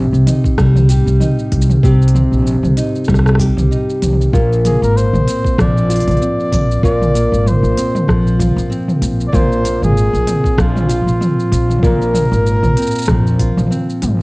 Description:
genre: folktronica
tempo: 96 BPM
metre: 4/4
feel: swing 56% on 16ths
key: Bb mixolydian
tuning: A4 = 440 Hz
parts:
  - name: nylon-string guitar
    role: arpeggios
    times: 0.0-14.2 s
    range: Bb2 to G4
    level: -17 LUFS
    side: equal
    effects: cassette tape
  - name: upright bass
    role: bass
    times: 0.0-14.2 s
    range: Ab1 to C2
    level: -14 LUFS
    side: equal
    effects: transformer saturation
  - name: organic electronic drum kit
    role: drums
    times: 0.1-14.2 s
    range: hi-hat, rim click, shaker, toms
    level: -20 LUFS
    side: equal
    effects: cassette tape
  - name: electronic kick drum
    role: drums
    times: 0.4-13.5 s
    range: none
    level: -16 LUFS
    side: equal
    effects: cassette tape
  - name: warm flugelhorn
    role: melody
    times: 4.7-13.7 s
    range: F4 to D5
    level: -20 LUFS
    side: equal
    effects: cassette tape, plate reverb, analog delay
room: little or no reverb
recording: home recording on cassette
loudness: -11 LUFS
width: side -25 dB against mid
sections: 0.0-14.2 A section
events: none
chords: 0.0 Cm; 4.3 Bbsus2

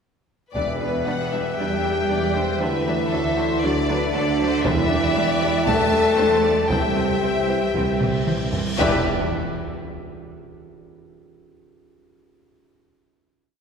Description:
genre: cinematic, epic orchestral film score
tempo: 117 BPM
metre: 4/4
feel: straight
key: E minor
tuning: A4 = 441 Hz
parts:
  - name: rich studio violin section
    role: second line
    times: 0.5-9.1 s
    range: A4 to F#5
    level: -28 LUFS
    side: left 3 dB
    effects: none
  - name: rich symphonic viola section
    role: accompaniment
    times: 0.5-9.1 s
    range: E3 to G4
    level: -30 LUFS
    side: right 2 dB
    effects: none
  - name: mellow French horn section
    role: sustained chords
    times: 0.5-9.0 s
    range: B3 to A4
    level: -24 LUFS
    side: left 2 dB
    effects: none
  - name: warm woodwind section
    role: sustained chords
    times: 0.5-9.0 s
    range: C4 to E5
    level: -29 LUFS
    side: equal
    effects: none
  - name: rich symphonic double bass section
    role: bass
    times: 0.5-9.1 s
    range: C2 to E2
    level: -31 LUFS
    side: right 3 dB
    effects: none
  - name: warm tuba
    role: bass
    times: 0.5-9.0 s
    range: E1 to D2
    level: -30 LUFS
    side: right 3 dB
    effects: none
  - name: solo taiko drums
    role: drums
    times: 0.5-1.5, 4.6-9.8 s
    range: none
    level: -28 LUFS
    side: equal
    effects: none
  - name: rich chamber violin section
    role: melody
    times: 0.6-9.1 s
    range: B4 to A5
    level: -27 LUFS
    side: left 3 dB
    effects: none
  - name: rich symphonic cello section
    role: bass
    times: 0.6-9.1 s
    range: B2 to A3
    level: -29 LUFS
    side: right 4 dB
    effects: none
  - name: timpani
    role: percussion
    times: 0.6-1.3, 8.8-9.0 s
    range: E2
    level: -33 LUFS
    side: equal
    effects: none
  - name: cymbal swell and impact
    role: sound effects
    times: 7.9-10.8 s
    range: none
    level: -34 LUFS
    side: equal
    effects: none
room: wet concert hall reverb, RT60 2.5 s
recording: heard from further back in the room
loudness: -19 LUFS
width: side -6 dB against mid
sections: 0.5-8.8 theme; 8.8-10.8 final chord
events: cymbal swell 7.9-8.8; drum fill 8.0-8.8; impact 8.8-10.8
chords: 0.5 Em7; 2.6 Dadd9; 4.7 Em7; 6.7 C; 8.8 Em

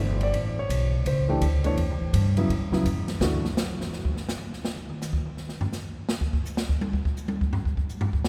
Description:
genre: jazz piano trio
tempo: 167 BPM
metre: 4/4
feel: swing 63% on 8ths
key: A mixolydian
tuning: A4 = 440 Hz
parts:
  - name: warm concert grand piano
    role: melody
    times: 0.0-3.4 s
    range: B2 to D5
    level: -32 LUFS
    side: equal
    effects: none
  - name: upright bass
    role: bass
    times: 0.0-3.4 s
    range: G1 to G2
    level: -28 LUFS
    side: equal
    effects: none
  - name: open jazz drum kit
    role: drums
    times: 0.2-8.3 s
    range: hi-hat, kick drum, ride cymbal, snare drum, toms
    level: -31 LUFS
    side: equal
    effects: none
room: wet cathedral reverb, RT60 6.2 s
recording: recorded in a church or concert hall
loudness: -27 LUFS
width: mono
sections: 0.0-8.3 A section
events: grand piano solo 0.0-8.3; drum solo 3.2-8.3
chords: 0.3 A9; 3.2 N.C.

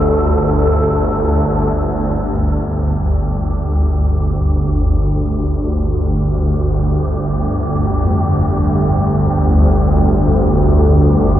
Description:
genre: dark ambient drone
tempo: free time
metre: none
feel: none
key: unclear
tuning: A4 = 440 Hz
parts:
  - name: swarming drone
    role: drone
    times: 0.0-11.4 s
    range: G1 to D2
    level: -13 LUFS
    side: equal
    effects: built-in reverb
  - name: wind-like tuned noise texture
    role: texture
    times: 0.0-11.4 s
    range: G4 to A4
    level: -23 LUFS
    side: equal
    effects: built-in reverb
  - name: deep dark ambient pad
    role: sustained chords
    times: 3.9-11.4 s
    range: G3 to A4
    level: -24 LUFS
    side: left 1 dB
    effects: none
  - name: gamelan-type bossed gongs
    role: arpeggios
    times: 8.0-11.4 s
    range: F2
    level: -22 LUFS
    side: left 1 dB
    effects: none
room: moderate huge ambient reverb, RT60 8.8 s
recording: worn, warbling old tape, cassette tape, warbly pitch drift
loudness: -13 LUFS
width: side -12 dB against mid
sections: 0.0-1.8 A section; 1.8-11.4 B section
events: fade-in on synth texture 1.8-11.4; filter sweep on synth drone 1.8-11.4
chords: 0.0 Gsus2

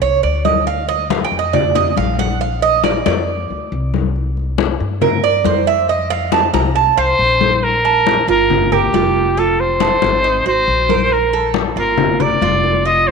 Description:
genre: latin, Cuban son and guajira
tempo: 138 BPM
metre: 4/4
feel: straight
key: Bb major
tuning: A4 = 440 Hz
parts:
  - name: Cuban tres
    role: arpeggios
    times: 0.0-13.1 s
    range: Eb4 to Bb5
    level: -17 LUFS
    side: right 9 dB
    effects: none
  - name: upright bass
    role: bass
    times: 0.0-13.1 s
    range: F1 to G2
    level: -21 LUFS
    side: left 1 dB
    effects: none
  - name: congas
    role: percussion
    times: 0.0-13.1 s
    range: none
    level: -20 LUFS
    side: left 12 dB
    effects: none
  - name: breathy trumpet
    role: melody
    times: 7.0-13.1 s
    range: G4 to Eb5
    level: -15 LUFS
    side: left 1 dB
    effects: none
room: moderate echo chamber reverb, RT60 2.3 s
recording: 1960s-style stereo with parts hard left and right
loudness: -13 LUFS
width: side -5 dB against mid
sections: 0.0-7.6 A section; 7.6-13.1 B section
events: Cuban tres solo 0.0-7.6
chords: 0.0 N.C.; 0.7 Dm; 2.4 Bb; 4.2 C5; 5.9 F5; 7.6 Bb5; 8.5 Gm7; 9.4 F; 10.2 Ab7; 11.1 Bb5; 12.0 Gm7

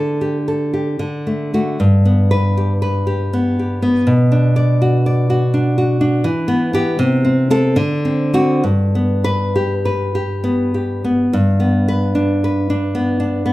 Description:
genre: romantic piece for solo classical guitar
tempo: 66-84 BPM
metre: 3/4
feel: rubato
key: G major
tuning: A4 = 440 Hz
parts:
  - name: nylon-string guitar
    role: solo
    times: 0.0-13.5 s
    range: G2 to D5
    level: -14 LUFS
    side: equal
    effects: none
room: moderate large studio reverb, RT60 0.9 s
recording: band playing live in one room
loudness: -14 LUFS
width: side -17 dB against mid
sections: 0.0-11.3 A section; 11.3-13.5 A section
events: none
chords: 0.0 Dsus4; 1.0 D; 1.8 G; 4.1 Bm; 6.3 Em; 7.0 Am/C; 7.8 D7; 8.7 G

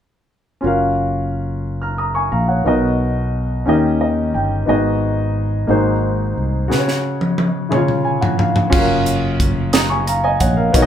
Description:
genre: slow gospel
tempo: 59 BPM (dotted quarters)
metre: 6/8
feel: straight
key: F# major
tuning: A4 = 440 Hz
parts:
  - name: warm grand piano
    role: accompaniment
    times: 0.6-10.9 s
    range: G#2 to E#6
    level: -17 LUFS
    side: equal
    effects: none
  - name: fingered electric bass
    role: bass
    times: 0.6-10.9 s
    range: F#1 to D#2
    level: -20 LUFS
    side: equal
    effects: none
  - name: crisp fusion drum kit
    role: drums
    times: 6.7-10.9 s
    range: crash cymbal, hi-hat, kick drum, snare drum, toms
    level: -18 LUFS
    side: right 1 dB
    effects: none
room: moderate studio ambience, RT60 0.5 s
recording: band playing live in one room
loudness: -15 LUFS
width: side -9 dB against mid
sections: 0.6-8.7 A section; 8.7-10.9 B section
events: grand piano fill 3.7-4.7, 7.7-8.7; drum fill 6.7-8.7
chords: 0.6 F#maj7; 2.7 Bmaj7; 3.7 D#7; 4.7 G#m7; 5.7 G#9; 6.7 C#sus4; 7.7 C#; 8.7 F#maj7

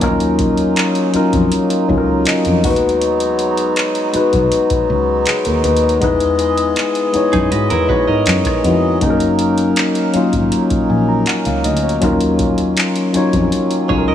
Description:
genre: contemporary R&B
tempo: 80 BPM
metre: 4/4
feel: straight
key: unclear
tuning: A4 = 439 Hz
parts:
  - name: mellow tine electric piano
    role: accompaniment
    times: 0.0-14.1 s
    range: F#3 to A#5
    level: -15 LUFS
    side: left 3 dB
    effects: none
  - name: hand-pumped harmonium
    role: sustained chords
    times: 0.0-14.1 s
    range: D#3 to D#5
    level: -22 LUFS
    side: right 4 dB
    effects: none
  - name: fingered electric bass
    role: bass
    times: 0.0-14.1 s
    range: F#1 to G#2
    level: -20 LUFS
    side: equal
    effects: none
  - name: booming analog drum machine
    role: drums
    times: 0.0-14.1 s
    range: handclaps, hi-hat, kick drum, rim click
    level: -21 LUFS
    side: equal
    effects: none
  - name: direct-recorded clean electric guitar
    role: arpeggios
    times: 7.3-9.0, 13.9-14.1 s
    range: D#4 to D#5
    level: -20 LUFS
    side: right 6 dB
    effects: digital delay
room: light reverb, digital ambience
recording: small room ambience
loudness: -13 LUFS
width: side -10 dB against mid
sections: 0.0-14.1 A section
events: tine electric piano fill 1.9-3.0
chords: 0.0 D#m9; 2.6 G#m7; 6.0 Emaj7; 9.0 F#6; 12.0 D#m9

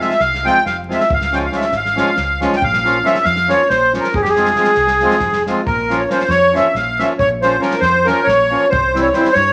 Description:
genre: balkan folk, Balkan wedding band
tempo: 276 BPM (eighths)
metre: 7/8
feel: straight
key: unclear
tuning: A4 = 441 Hz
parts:
  - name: accordion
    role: melody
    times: 0.0-9.5 s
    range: G4 to G5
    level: -16 LUFS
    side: equal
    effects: light tremolo tuning
  - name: accordion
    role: accompaniment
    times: 0.0-9.3 s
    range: E3 to F4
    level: -23 LUFS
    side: equal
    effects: none
  - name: loose indie drum kit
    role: percussion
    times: 0.0-9.4 s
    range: kick drum, snare drum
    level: -29 LUFS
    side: equal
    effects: none
  - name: deep dub fingered electric bass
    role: bass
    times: 0.2-9.5 s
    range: F1 to G2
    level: -27 LUFS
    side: equal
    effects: none
room: moderate large studio reverb, RT60 0.9 s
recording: vinyl crackle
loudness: -15 LUFS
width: mono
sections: 0.0-5.7 A section; 5.7-9.5 B section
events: none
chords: 0.0 Fm; 1.1 Db; 2.6 Bbm; 4.1 Fm; 5.7 Bbm; 8.7 C

